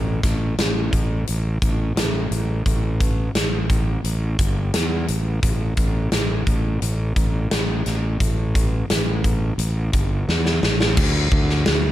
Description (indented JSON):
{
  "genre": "hard rock",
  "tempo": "87 BPM",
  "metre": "4/4",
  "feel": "straight",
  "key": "unclear",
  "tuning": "A4 = 441 Hz",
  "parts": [
    { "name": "fuzz fingered electric bass", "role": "bass", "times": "0.0-11.9 s", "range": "G1 to E2", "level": "-21 LUFS", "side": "equal", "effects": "overdrive" },
    { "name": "big rock drum kit", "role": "drums", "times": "0.2-11.8 s", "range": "crash cymbal, hi-hat, kick drum, snare drum", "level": "-21 LUFS", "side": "equal", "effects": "none" }
  ],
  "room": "little or no reverb",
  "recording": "none",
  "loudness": "-18 LUFS",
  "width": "side -14 dB against mid",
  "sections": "0.0-11.0 A section",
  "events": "drum fill 10.3-11.0",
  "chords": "none"
}